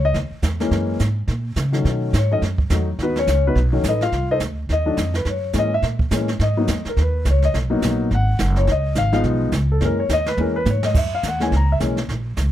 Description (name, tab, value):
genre	jazz piano trio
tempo	211 BPM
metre	4/4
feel	swing 59% on 8ths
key	F# mixolydian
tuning	A4 = 440 Hz
part	warm concert grand piano	melody	0.0-12.0 s	D#3 to A#5	-21 LUFS	left 2 dB	none
part	upright bass	bass	0.0-12.5 s	F#1 to C#3	-20 LUFS	equal	none
part	jazz brush drum kit	drums	0.1-12.5 s	brushed snare drum, crash cymbal, hi-hat, kick drum, snare drum, toms	-25 LUFS	right 2 dB	none
room	little or no reverb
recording	close, detailed microphones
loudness	-17 LUFS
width	side -12 dB against mid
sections	0.0-10.9 A section; 10.9-12.5 A section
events	grand piano solo 0.0-12.5; drum fill 10.4-10.9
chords	0.0 N.C.; 0.7 F#7; 1.9 B7; 4.1 Cm; 5.3 F#7; 6.4 G#m7; 8.7 C#7; 9.8 F#7